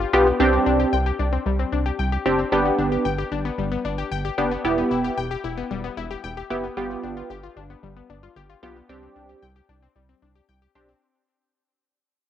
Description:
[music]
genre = pop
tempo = 113 BPM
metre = 4/4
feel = straight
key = unclear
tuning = A4 = 440 Hz
[part]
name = analog pluck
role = arpeggios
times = 0.0-11.0 s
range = G3 to G5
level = -28 LUFS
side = left 8 dB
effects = chorus, tape echo
[part]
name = rubbery square bass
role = bass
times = 0.0-10.9 s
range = E1 to C2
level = -27 LUFS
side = right 1 dB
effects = none
[part]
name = funky polysynth comp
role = accompaniment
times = 0.1-10.9 s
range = B3 to G4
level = -21 LUFS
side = right 1 dB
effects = chorus
[sound]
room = moderate spring reverb, RT60 2.8 s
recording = home recording on cassette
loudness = -20 LUFS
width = side -10 dB against mid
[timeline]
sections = 0.0-11.0 A section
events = fade-out 0.0-11.0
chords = 0.4 Csus2; 2.5 G; 4.6 Em; 6.8 G7; 8.9 Csus2

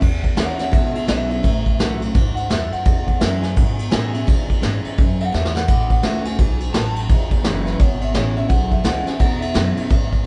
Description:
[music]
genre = rockabilly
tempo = 170 BPM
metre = 4/4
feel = swing 62% on 8ths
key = E major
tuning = A4 = 440 Hz
[part]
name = picked steel-string acoustic guitar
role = accompaniment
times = 0.0-10.3 s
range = E2 to F#4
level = -28 LUFS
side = equal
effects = none
[part]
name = upright bass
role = bass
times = 0.0-10.2 s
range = E1 to B2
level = -26 LUFS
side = equal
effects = none
[part]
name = vintage brush drum kit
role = drums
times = 0.0-10.2 s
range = crash cymbal, kick drum, ride cymbal, snare drum, splash cymbal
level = -20 LUFS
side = equal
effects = none
[part]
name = electric guitar through a small old amp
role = melody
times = 0.4-10.1 s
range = G#4 to A5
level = -29 LUFS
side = equal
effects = none
[sound]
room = light reverb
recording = band playing live in one room, nothing above 10.9 kHz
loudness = -19 LUFS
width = mono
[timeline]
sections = 0.0-10.3 A section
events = clean electric guitar solo 0.0-10.3; drum fill 5.3-5.7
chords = 0.0 E6; 1.4 A6; 2.9 E6; 5.7 A6; 7.1 E6

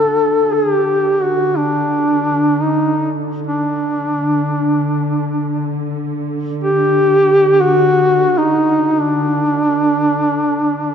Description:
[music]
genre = caucasian folk, Caucasian lament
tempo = free time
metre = none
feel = none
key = D major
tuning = A4 = 442 Hz
[part]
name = mellow duduk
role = melody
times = 0.0-10.9 s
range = D4 to A4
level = -14 LUFS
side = equal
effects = none
[part]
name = dark studio string section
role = drone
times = 0.0-10.9 s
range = D3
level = -21 LUFS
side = equal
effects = none
[sound]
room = wet church reverb, RT60 3.8 s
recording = dark, warm production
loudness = -13 LUFS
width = side -7 dB against mid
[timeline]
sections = 0.0-10.9 A section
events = none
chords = none

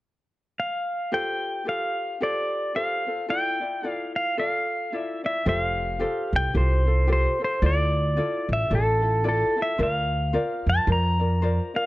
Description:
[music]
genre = Hawaiian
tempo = 111 BPM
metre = 4/4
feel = swing 59% on 8ths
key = F major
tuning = A4 = 441 Hz
[part]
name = pedal steel guitar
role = melody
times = 0.6-11.9 s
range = A4 to Bb5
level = -25 LUFS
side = equal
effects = none
[part]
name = ukulele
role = accompaniment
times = 1.1-11.9 s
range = E4 to D5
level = -30 LUFS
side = left 2 dB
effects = none
[part]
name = upright bass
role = bass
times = 5.5-11.6 s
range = F1 to F2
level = -23 LUFS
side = equal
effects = none
[sound]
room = light reverb, small room ambience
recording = dark, warm production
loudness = -22 LUFS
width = side -18 dB against mid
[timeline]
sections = 0.0-1.1 A section; 1.1-5.5 B section; 5.5-11.9 C section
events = none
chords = 0.0 N.C.; 1.1 Fadd9; 3.3 Dmadd9; 5.5 Fadd9; 7.6 Dmadd9; 9.8 Bbadd9/D

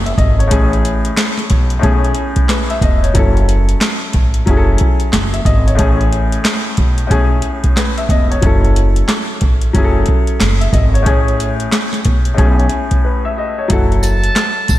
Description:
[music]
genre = hip hop, boom-bap hip-hop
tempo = 91 BPM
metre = 4/4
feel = swing 62% on 16ths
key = F# dorian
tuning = A4 = 439 Hz
[part]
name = clear upright piano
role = accompaniment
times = 0.0-14.8 s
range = A2 to E5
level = -18 LUFS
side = left 3 dB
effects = cassette tape, high-pass filter, low-pass filter
[part]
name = upright bass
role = bass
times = 0.0-14.8 s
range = E1 to B1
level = -15 LUFS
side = equal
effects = none
[part]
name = booming analog drum machine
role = drums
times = 0.1-14.8 s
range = handclaps, hi-hat, kick drum, snare drum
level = -14 LUFS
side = equal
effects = none
[part]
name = trumpet with metal mute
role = melody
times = 14.0-14.8 s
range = A5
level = -18 LUFS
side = right 2 dB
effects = high-pass filter, low-pass filter
[part]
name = tambourine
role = percussion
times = 14.0-14.8 s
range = none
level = -28 LUFS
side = right 6 dB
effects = none
[sound]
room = light reverb, small room ambience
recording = none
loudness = -11 LUFS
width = side -15 dB against mid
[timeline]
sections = 0.0-13.7 A section; 13.7-14.8 B section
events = break 13.0-13.7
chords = 0.0 F#m7; 0.5 Amaj7; 3.2 F#m7; 5.8 Amaj7; 8.4 F#m7; 11.1 Amaj7; 13.7 F#m7

